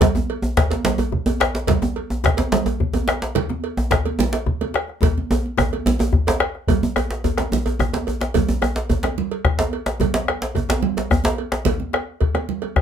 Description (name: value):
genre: west african traditional, West African drum ensemble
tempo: 144 BPM (dotted quarters)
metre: 12/8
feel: straight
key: none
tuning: none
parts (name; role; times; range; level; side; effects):
- bombo; percussion; 0.0-12.8 s; none; -22 LUFS; left 1 dB; none
- congas; percussion; 0.0-12.8 s; none; -26 LUFS; right 7 dB; none
- cowbell; percussion; 0.0-12.8 s; none; -27 LUFS; right 7 dB; none
- djembe; percussion; 0.0-12.8 s; none; -26 LUFS; left 6 dB; none
- djembe; percussion; 0.0-11.8 s; none; -22 LUFS; right 1 dB; none
room: wet studio ambience, RT60 0.5 s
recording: minimal, uncompressed stereo recording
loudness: -18 LUFS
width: side -8 dB against mid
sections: 0.0-6.7 A section; 6.7-12.8 B section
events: drum fill 5.0-6.7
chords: none